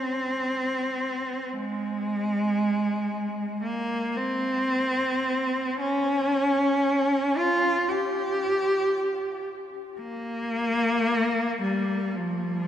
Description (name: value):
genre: classical, free, expressive piece for unaccompanied cello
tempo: free time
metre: none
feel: none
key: unclear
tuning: A4 = 439 Hz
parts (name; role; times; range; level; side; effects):
- rich cello; solo; 0.0-12.7 s; F3 to G4; -24 LUFS; equal; none
room: wet cathedral reverb, RT60 4.8 s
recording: none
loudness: -24 LUFS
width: side -10 dB against mid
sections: 0.0-12.7 A section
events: none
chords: none